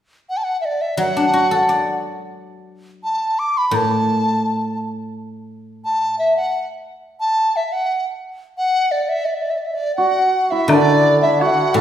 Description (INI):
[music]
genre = chinese traditional, Chinese chamber ensemble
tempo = 86 BPM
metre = 2/4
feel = rubato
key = D gong mode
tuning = A4 = 441 Hz
[part]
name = large dizi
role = melody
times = 0.3-11.8 s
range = D5 to D6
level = -18 LUFS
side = equal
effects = none
[part]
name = guzheng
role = accompaniment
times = 1.0-5.8, 10.7-11.8 s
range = A2 to D5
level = -19 LUFS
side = left 1 dB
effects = none
[part]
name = hammered dulcimer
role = second line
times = 10.0-11.8 s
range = D4 to A4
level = -18 LUFS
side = right 3 dB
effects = none
[part]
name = mellow hollow large dizi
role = second line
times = 10.0-11.8 s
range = D5 to A5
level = -21 LUFS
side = left 4 dB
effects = none
[part]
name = woodblock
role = percussion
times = 10.7-11.6 s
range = none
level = -27 LUFS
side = left 1 dB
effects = none
[sound]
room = wet recital hall reverb, RT60 1.6 s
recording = recorded in a church or concert hall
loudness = -16 LUFS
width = side -10 dB against mid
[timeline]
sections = 0.0-10.7 A section; 10.7-11.8 B section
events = none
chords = none